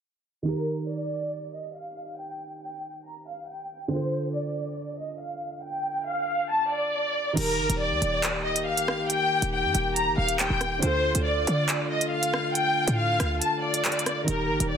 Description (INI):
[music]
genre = hip hop, drill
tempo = 139 BPM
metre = 4/4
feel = half-time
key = unclear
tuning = A4 = 440 Hz
[part]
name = felt-muted upright piano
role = accompaniment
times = 0.4-14.8 s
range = D3 to Bb4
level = -34 LUFS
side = right 4 dB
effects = none
[part]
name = warm studio violin section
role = melody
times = 0.5-14.8 s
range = Bb4 to Bb5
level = -27 LUFS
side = left 1 dB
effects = none
[part]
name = dark brass ensemble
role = sustained chords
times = 7.4-14.8 s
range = D3 to G4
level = -32 LUFS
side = left 3 dB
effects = none
[part]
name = short 808-style bass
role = bass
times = 7.4-14.8 s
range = Eb1 to D3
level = -29 LUFS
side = equal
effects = none
[part]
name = drill drum kit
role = drums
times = 7.4-14.7 s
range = crash cymbal, handclaps, hi-hat, rim click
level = -28 LUFS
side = right 1 dB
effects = none
[sound]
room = light reverb, small room ambience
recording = dense, heavily limited modern master, low-pass filter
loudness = -24 LUFS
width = side -8 dB against mid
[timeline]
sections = 0.5-7.4 A section; 7.4-14.8 B section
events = filter sweep 0.5-7.4; kick muted 13.4-14.3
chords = 0.5 Eb; 3.9 Dm; 7.4 Eb; 10.8 Dm